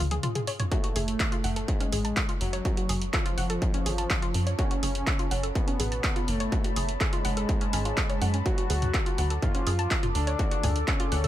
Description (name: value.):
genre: melodic techno.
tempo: 124 BPM.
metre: 4/4.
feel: straight.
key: F# harmonic minor.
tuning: A4 = 441 Hz.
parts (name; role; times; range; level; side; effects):
analog pluck; arpeggios; 0.0-11.3 s; C#4 to A5; -35 LUFS; left 1 dB; chorus, cassette tape, sidechain pumping, tape echo.
tight sequencer bass; bass; 0.0-11.3 s; F#1 to F#2; -28 LUFS; equal; sidechain pumping.
punchy analog drum machine; drums; 0.1-11.3 s; handclaps, hi-hat, toms; -32 LUFS; equal; none.
fat analog lead; melody; 0.7-11.3 s; E#3 to F#4; -33 LUFS; equal; chorus, sidechain pumping, digital delay.
deep dark ambient pad; sustained chords; 2.0-11.3 s; A4 to D6; -37 LUFS; left 1 dB; chorus, built-in reverb, sidechain pumping.
electronic kick drum; drums; 0.7-11.0 s; none; -28 LUFS; equal; distortion.
room: little or no reverb.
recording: none.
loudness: -25 LUFS.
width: side -13 dB against mid.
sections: 0.0-11.3 A section.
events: drum fill 0.0-0.7.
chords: 0.0 C#; 0.7 F#m; 8.5 D.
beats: 0.23 | 0.72 1.20 1.68 2.17 | 2.65 3.13 3.62 4.10 | 4.59 5.07 5.55 6.04 | 6.52 7.01 7.49 7.97 | 8.46 8.94 9.43 9.91 | 10.39 10.88.